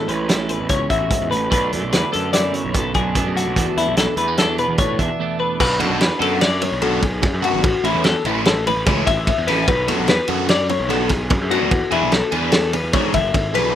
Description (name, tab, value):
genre	math rock and midwest emo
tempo	147 BPM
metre	5/4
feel	straight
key	unclear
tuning	A4 = 440 Hz
part	twelve-string electric guitar	accompaniment	0.0-7.7 s	E2 to F#4	-26 LUFS	right 9 dB	spring reverb
part	twelve-string electric guitar	arpeggios	0.0-13.7 s	E4 to E5	-21 LUFS	left 5 dB	none
part	fuzz picked electric bass	bass	0.1-13.7 s	F#1 to A2	-24 LUFS	right 1 dB	overdrive
part	loose indie drum kit	drums	0.1-13.6 s	crash cymbal, hi-hat, kick drum, ride cymbal, snare drum	-20 LUFS	right 1 dB	none
part	overdriven electric guitar	riff	5.6-13.7 s	E3 to G#4	-21 LUFS	right 1 dB	phaser
room	little or no reverb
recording	rough home demo mix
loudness	-16 LUFS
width	side -10 dB against mid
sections	0.0-5.6 A section; 5.6-13.8 B section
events	break 5.2-5.6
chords	0.0 Amaj9; 1.5 Bm7; 3.6 E7sus4; 5.6 Bm7; 7.6 Aadd9; 9.7 Bm7; 11.7 E9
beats	0.29 0.70 1.11 | 1.51 1.92 2.33 2.74 3.15 | 3.56 3.97 4.38 4.79 5.19 | 5.60 6.01 6.42 6.82 7.23 | 7.64 8.05 8.45 8.86 9.27 | 9.68 10.08 10.49 10.90 11.30 | 11.71 12.12 12.53 12.93 13.34 | 13.75